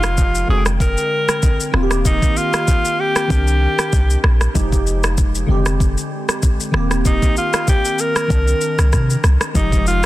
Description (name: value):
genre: afrobeats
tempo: 96 BPM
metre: 4/4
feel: swing 55% on 16ths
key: F dorian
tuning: A4 = 441 Hz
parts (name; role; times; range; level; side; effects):
- bright alto saxophone; melody; 0.0-10.1 s; Eb4 to Bb4; -20 LUFS; equal; ping-pong delay
- glassy digital keys; accompaniment; 0.0-10.1 s; D3 to G5; -23 LUFS; equal; chorus
- clean 808-style bass; bass; 0.0-10.1 s; Eb1 to C3; -17 LUFS; equal; none
- afro-pop drum kit; drums; 0.0-10.1 s; kick drum, rim click, shaker; -18 LUFS; equal; soft clipping on snare
room: digital ambience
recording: dense, heavily limited modern master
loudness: -14 LUFS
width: side -16 dB against mid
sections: 0.0-10.1 A section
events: none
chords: 0.5 Bb13/F; 1.7 Eb6; 3.3 Cm9; 4.6 Fm9; 5.5 Fm69; 6.7 Eb6; 8.3 Cm9; 9.6 Fm9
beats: 0.18 0.80 1.43 | 2.05 2.68 3.30 3.93 | 4.55 5.18 5.80 6.43 | 7.05 7.68 8.30 8.93 | 9.55